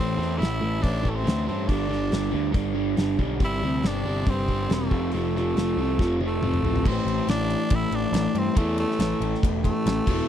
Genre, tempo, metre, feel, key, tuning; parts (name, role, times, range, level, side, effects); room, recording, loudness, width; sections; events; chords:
classic rock; 140 BPM; 4/4; straight; A minor; A4 = 440 Hz
raspy tenor saxophone; melody; 0.0-10.3 s; A3 to E4; -30 LUFS; equal
crunchy overdriven guitar; riff; 0.0-10.3 s; E2 to C4; -26 LUFS; equal
fuzz picked electric bass; bass; 0.0-10.2 s; E1 to G2; -28 LUFS; equal; overdrive
damped 70s drum kit; drums; 0.2-10.2 s; crash cymbal, hi-hat, kick drum, ride cymbal, snare drum, toms; -25 LUFS; equal
little or no reverb; dry, close 1970s-style studio recording; -22 LUFS; side -10 dB against mid
0.0-6.9 A section; 6.9-10.3 B section
drum fill 6.0-6.9
0.0 Am; 1.7 G5; 3.4 C/G; 4.9 F; 6.9 A5